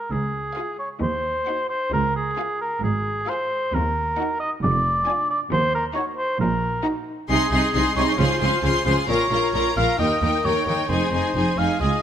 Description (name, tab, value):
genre	cinematic, playful, whimsical film cue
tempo	133 BPM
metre	4/4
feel	straight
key	unclear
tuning	A4 = 440 Hz
part	mellow oboe	second line	0.0-12.0 s	Ab4 to F5	-24 LUFS	equal	none
part	bright studio double bass section	bass	0.1-11.9 s	F1 to Eb2	-26 LUFS	right 2 dB	none
part	rich studio cello section	bass	0.1-11.9 s	Db2 to Db3	-27 LUFS	right 1 dB	none
part	rich studio violin section	melody	0.6-12.0 s	F5 to C6	-28 LUFS	left 3 dB	none
part	rich studio violin section	second line	0.6-12.0 s	F4 to Bb4	-29 LUFS	left 4 dB	none
part	rich studio viola section	accompaniment	0.6-12.0 s	D4 to F4	-27 LUFS	equal	none
room	moderate scoring stage reverb, RT60 1.9 s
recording	none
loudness	-20 LUFS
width	side -9 dB against mid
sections	0.1-12.0 A section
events	none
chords	0.1 Db; 1.0 Cdim/Eb; 1.9 Db; 3.7 Ebm; 4.6 Ddim/F; 5.5 Ebm; 7.3 Ab/C; 8.2 Dbmaj7; 9.1 Bbm; 10.0 Eb; 10.9 Fm7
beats	| 0.11 0.57 1.02 1.47 | 1.92 2.38 2.83 3.28 | 3.73 4.18 4.62 5.07 | 5.51 5.96 6.41 6.85 | 7.30 7.75 8.19 8.64 | 9.09 9.54 9.99 10.45 | 10.90 11.35 11.80